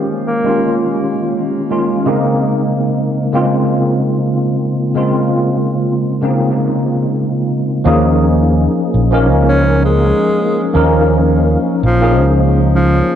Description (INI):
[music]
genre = vaporwave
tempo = 83 BPM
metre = 4/4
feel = straight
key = unclear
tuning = A4 = 440 Hz
[part]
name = tine electric piano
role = accompaniment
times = 0.0-13.2 s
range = Db3 to Bb4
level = -13 LUFS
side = equal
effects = fast stereo tremolo, ensemble chorus, analog delay
[part]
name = warm alto saxophone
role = melody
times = 0.3-0.8, 9.5-13.2 s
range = F3 to Db4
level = -18 LUFS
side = equal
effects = tape echo
[part]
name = fretless electric bass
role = bass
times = 7.9-13.0 s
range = Bb1 to Eb2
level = -13 LUFS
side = equal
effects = none
[sound]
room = moderate lush hall reverb, RT60 1.9 s, small room ambience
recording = low-pass filter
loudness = -12 LUFS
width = side -9 dB against mid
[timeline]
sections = 0.0-7.9 A section; 7.9-13.2 B section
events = filter sweep 0.0-7.9; stop 7.1-7.9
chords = 0.0 Eb9sus4; 2.1 Bbm11; 7.9 Eb9sus4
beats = 0.62 1.35 | 2.07 2.79 3.52 4.24 | 4.96 5.68 6.41 7.13 | 7.85 8.58 9.30 10.02 | 10.74 11.47 12.19 12.91